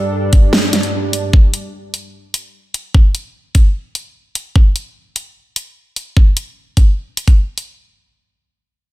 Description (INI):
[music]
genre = heavy wobble dubstep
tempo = 149 BPM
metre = 4/4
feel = half-time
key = unclear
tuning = A4 = 440 Hz
[part]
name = lush unison pad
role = sustained chords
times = 0.0-1.3 s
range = G2 to D4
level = -20 LUFS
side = right 1 dB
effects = chorus, vintage 12-bit sampler grit, sidechain pumping
[part]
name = dubstep drum kit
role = drums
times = 0.3-7.7 s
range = hi-hat, snare drum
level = -18 LUFS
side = equal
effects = studio reverb
[part]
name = electronic kick drum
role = drums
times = 0.3-7.4 s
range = none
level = -9 LUFS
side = equal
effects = studio reverb
[sound]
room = digital ambience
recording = dense, heavily limited modern master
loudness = -12 LUFS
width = side -18 dB against mid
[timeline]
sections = 0.0-7.8 A section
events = none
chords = 0.0 G5